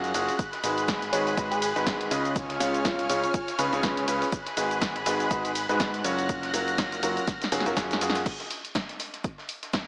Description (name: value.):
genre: piano house.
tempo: 122 BPM.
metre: 4/4.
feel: swing 57% on 16ths.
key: unclear.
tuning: A4 = 440 Hz.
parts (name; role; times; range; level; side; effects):
bright symphonic string section; sustained chords; 0.0-8.2 s; G#4 to A#6; -32 LUFS; equal; sidechain pumping.
clear baby grand piano; riff; 0.0-8.2 s; C#3 to D#5; -28 LUFS; equal; sidechain pumping, analog delay.
fat analog bass; bass; 0.0-8.2 s; F#1 to G#2; -34 LUFS; equal; sidechain pumping.
electronic snare drum and shaker; drums; 0.0-9.9 s; none; -38 LUFS; equal; none.
punchy analog drum machine; drums; 0.0-9.8 s; crash cymbal, hi-hat, ride cymbal, shaker, snare drum; -32 LUFS; equal; none.
electronic kick drum; drums; 0.4-9.8 s; none; -31 LUFS; equal; none.
soft struck synth lead; melody; 1.1-3.5 s; E#4 to C#5; -31 LUFS; equal; chorus, analog delay.
room: moderate plate reverb, RT60 1.3 s, digital ambience.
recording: dreamy mix soaked in reverb, small speaker sound.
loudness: -24 LUFS.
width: side -31 dB against mid.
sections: 0.0-8.3 A section; 8.3-9.9 B section.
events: drop 0.0-8.3; drum fill 7.3-8.3.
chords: 0.4 G#m7; 2.4 C#; 4.3 G#m7; 6.0 F#maj7; 8.3 N.C..